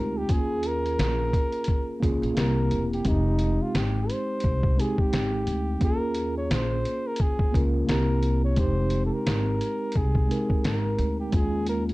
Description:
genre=lo-fi hip hop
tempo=87 BPM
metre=4/4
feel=swing 58% on 16ths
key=F minor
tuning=A4 = 442 Hz
part: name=mellow flugelhorn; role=melody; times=0.0-11.8 s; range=Eb4 to Db5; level=-31 LUFS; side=equal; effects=none
part: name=mellow tine electric piano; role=accompaniment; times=0.0-11.9 s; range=G3 to Bb4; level=-28 LUFS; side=right 1 dB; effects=medium stereo tremolo
part: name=upright bass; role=bass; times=0.0-11.9 s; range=E1 to Eb2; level=-27 LUFS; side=equal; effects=none
part: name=lo-fi sampler-style drum kit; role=drums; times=0.3-11.9 s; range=hi-hat, kick drum, snare drum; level=-26 LUFS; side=equal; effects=vintage 12-bit sampler grit
room=light reverb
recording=dry, gritty hardware recording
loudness=-22 LUFS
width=side -20 dB against mid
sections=0.0-11.9 A section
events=none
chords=0.3 Eb9sus4; 2.4 C7; 3.1 Fm9; 5.8 Eb9sus4; 7.9 C7; 8.6 Fm9; 11.3 Eb9sus4

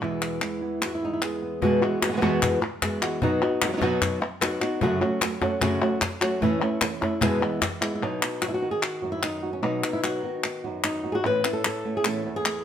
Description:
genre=flamenco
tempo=150 BPM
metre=4/4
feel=straight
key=E major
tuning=A4 = 440 Hz
part: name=flamenco guitar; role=melody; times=0.0-12.6 s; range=E2 to B4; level=-25 LUFS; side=left 1 dB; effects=none
part: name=flamenco guitar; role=stabs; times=0.0-12.5 s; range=E2 to F#4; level=-31 LUFS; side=right 6 dB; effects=none
part: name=palmas hand claps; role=percussion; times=0.0-12.6 s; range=none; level=-28 LUFS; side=left 3 dB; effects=none
part: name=cajon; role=percussion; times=1.6-7.8 s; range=none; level=-31 LUFS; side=left 4 dB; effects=none
room=moderate studio reverb, RT60 0.9 s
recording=none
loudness=-23 LUFS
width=side -9 dB against mid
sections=0.0-1.6 A section; 1.6-8.0 B section; 8.0-12.6 C section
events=none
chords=0.0 E; 1.6 Eadd9; 3.2 B; 4.8 F#m; 6.4 A; 7.2 E; 8.0 B; 11.2 Aadd9

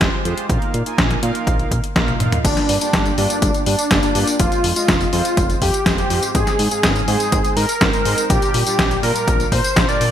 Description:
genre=italo disco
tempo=123 BPM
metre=4/4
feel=straight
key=unclear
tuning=A4 = 440 Hz
part: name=analog synth brass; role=stabs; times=0.0-10.1 s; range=G2 to Ab5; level=-25 LUFS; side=right 3 dB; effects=chorus, ping-pong delay
part: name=fat analog bass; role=bass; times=0.0-10.1 s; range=F1 to Bb2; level=-22 LUFS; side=equal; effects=none
part: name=detuned 8-bit digital drum machine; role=drums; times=0.0-10.1 s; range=crash cymbal, hi-hat, snare drum, tambourine, toms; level=-20 LUFS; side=left 1 dB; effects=overdrive
part: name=electronic kick drum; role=drums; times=0.0-9.9 s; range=none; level=-21 LUFS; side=equal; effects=overdrive
part: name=wide unison lead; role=melody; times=2.4-10.1 s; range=D4 to D5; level=-20 LUFS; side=equal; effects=ping-pong delay
room=moderate lush hall reverb, RT60 1.7 s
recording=bright 1980s-style digital production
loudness=-15 LUFS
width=side -10 dB against mid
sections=0.0-2.4 A section; 2.4-10.1 B section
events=drum fill 2.1-2.4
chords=0.5 Bbsus4; 2.4 Gm7; 4.4 Fm; 6.3 Ab; 8.3 Bb6

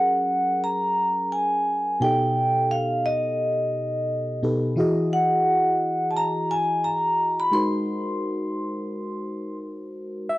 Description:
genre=R&B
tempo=87 BPM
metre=4/4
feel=swing 60% on 16ths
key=unclear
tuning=A4 = 440 Hz
part: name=vibraphone with medium hard mallets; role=melody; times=0.0-9.6 s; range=D#5 to B#5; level=-22 LUFS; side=equal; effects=cassette tape, plate reverb
part: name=FM electric piano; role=accompaniment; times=0.0-10.4 s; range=B2 to F#5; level=-26 LUFS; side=left 1 dB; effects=chorus, plate reverb
room=wet booth ambience, RT60 0.2 s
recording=home recording on cassette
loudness=-21 LUFS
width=side -18 dB against mid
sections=0.0-10.3 A section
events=none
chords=0.0 F#; 2.0 Baug7; 4.8 Emaj9; 7.5 G#7

